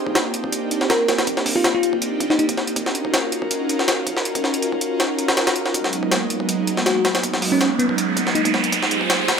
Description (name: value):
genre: drum and bass, jungle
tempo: 161 BPM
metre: 4/4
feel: swing 53% on 16ths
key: unclear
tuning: A4 = 439 Hz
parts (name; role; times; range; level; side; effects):
- airy breathy pad; sustained chords; 0.0-9.4 s; Gb3 to C5; -22 LUFS; right 1 dB; chorus
- jungle sampler-style drum kit; drums; 0.1-9.4 s; hi-hat, kick drum, snare drum; -21 LUFS; equal; overdrive, high-pass filter on kick, high-pass filter on hats, high-pass filter on snare
- bell-like FM electric piano; melody; 0.9-2.5, 6.9-8.5 s; Cb4 to Bb4; -22 LUFS; left 1 dB; chorus, low-pass filter, dub echo
- riser; sound effects; 7.3-9.4 s; none; -25 LUFS; right 4 dB; none
room: moderate lush hall reverb, RT60 2.0 s, digital ambience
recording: none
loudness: -18 LUFS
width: side -6 dB against mid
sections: 0.0-9.4 A section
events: build-up 0.0-9.4; riser 7.3-9.4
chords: 0.0 Cm9; 2.8 Ebm9; 5.7 Abm9; 8.7 Fm9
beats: 0.15 0.53 0.90 | 1.27 1.64 2.02 2.39 | 2.76 3.13 3.51 3.88 | 4.25 4.63 5.00 5.37 | 5.74 6.12 6.49 6.86 | 7.23 7.61 7.98 8.35 | 8.72 9.10